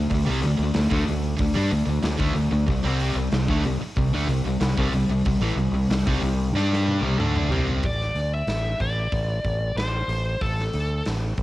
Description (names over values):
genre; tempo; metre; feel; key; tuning
hard rock; 93 BPM; 4/4; straight; unclear; A4 = 440 Hz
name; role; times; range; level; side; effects
cranked stack guitar; riff; 0.0-7.8 s; A2 to G4; -28 LUFS; right 5 dB; overdrive
sludgy distorted guitar; riff; 0.0-7.8 s; A2 to G4; -26 LUFS; left 4 dB; overdrive
growling fingered electric bass; bass; 0.0-11.4 s; A1 to G2; -24 LUFS; equal; overdrive
big rock drum kit; drums; 0.1-11.4 s; hi-hat, kick drum, snare drum, toms; -29 LUFS; equal; none
high-gain lead guitar; melody; 7.9-11.0 s; A4 to E5; -28 LUFS; left 1 dB; distortion, cassette tape
room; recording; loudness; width
light reverb, small room reverb; home recording on cassette; -21 LUFS; side -16 dB against mid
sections
0.0-7.8 A section; 7.8-11.4 B section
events
drum fill 6.5-7.8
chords
0.0 D5; 2.7 C5; 7.8 N.C.